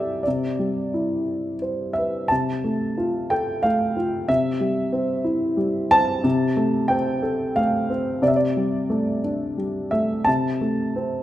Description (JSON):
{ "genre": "classical, lyrical solo piano", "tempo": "90 BPM", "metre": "3/4", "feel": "uneven beats, rubato", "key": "unclear", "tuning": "A4 = 438 Hz", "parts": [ { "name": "dark grand piano", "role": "solo", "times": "0.0-11.2 s", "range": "C3 to A5", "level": "-20 LUFS", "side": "equal", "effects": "none" } ], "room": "moderate recital hall reverb, RT60 1.5 s", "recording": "none", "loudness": "-20 LUFS", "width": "side -13 dB against mid", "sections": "0.0-2.3 A section; 2.3-11.2 B section", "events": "none", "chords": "0.3 Cmaj9; 2.3 Fadd9/C; 4.3 C6; 6.2 F/C; 8.2 Gsus2/C; 10.3 F/C (rootless)", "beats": "| 0.26 0.92 1.61 | 2.30 2.98 3.64 | 4.29 4.93 5.59 | 6.25 6.90 7.56 | 8.22 8.89 9.58 | 10.27 10.95" }